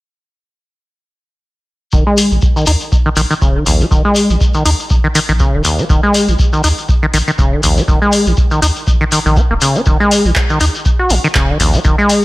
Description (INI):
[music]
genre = acid house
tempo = 121 BPM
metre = 4/4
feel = swing 56% on 16ths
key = unclear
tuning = A4 = 436 Hz
[part]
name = acid bass, saw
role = riff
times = 1.9-12.2 s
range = Eb2 to Gb4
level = -14 LUFS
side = equal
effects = sidechain pumping, dub echo
[part]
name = saturated sub bass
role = bass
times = 1.9-11.9 s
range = Eb1 to Eb2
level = -15 LUFS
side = equal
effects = sidechain pumping
[part]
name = electronic kick drum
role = drums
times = 1.9-12.0 s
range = none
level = -14 LUFS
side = equal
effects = none
[part]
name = shekere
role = percussion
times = 1.9-12.2 s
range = none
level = -21 LUFS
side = left 2 dB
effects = none
[part]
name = booming analog drum machine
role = drums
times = 2.2-12.2 s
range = handclaps, hi-hat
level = -19 LUFS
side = left 2 dB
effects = none
[sound]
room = light reverb, digital ambience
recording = none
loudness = -10 LUFS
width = side -20 dB against mid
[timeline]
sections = 1.9-12.2 A section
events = filter sweep on acid bass 1.9-12.2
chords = 1.9 Eb5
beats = | 1.93 2.42 2.92 3.42 | 3.91 4.41 4.90 5.40 | 5.90 6.39 6.89 7.38 | 7.88 8.38 8.87 9.37 | 9.86 10.36 10.86 11.35 | 11.85